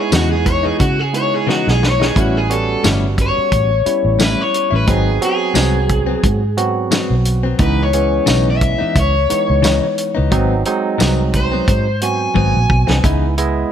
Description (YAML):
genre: straight-eighth soul blues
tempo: 88 BPM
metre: 4/4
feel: swing 54% on 16ths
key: unclear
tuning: A4 = 440 Hz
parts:
  - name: overdriven semi-hollow guitar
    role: melody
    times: 0.0-13.0 s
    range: F#4 to G#5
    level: -18 LUFS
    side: left 2 dB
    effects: spring reverb
  - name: barky tine electric piano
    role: accompaniment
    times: 0.0-13.7 s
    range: E3 to D#5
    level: -21 LUFS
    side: right 6 dB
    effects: none
  - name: direct-recorded clean electric guitar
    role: stabs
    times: 0.1-13.3 s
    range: G#2 to E4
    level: -22 LUFS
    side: left 6 dB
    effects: none
  - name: vintage muted fingered electric bass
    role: bass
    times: 0.1-13.6 s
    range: G1 to C#3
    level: -17 LUFS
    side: equal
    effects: none
  - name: warm soul drum kit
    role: drums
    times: 0.1-13.6 s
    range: hi-hat, kick drum, snare drum, tambourine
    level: -18 LUFS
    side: equal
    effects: none
room: little or no reverb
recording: none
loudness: -13 LUFS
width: side -9 dB against mid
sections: 0.0-13.0 A section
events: overdriven electric guitar solo 0.0-13.0; drum fill 1.5-2.2, 12.4-13.0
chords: 0.0 C#m9; 2.2 A7; 4.9 G#7#9; 7.6 C#m9; 10.3 G#7#9; 13.0 C#m9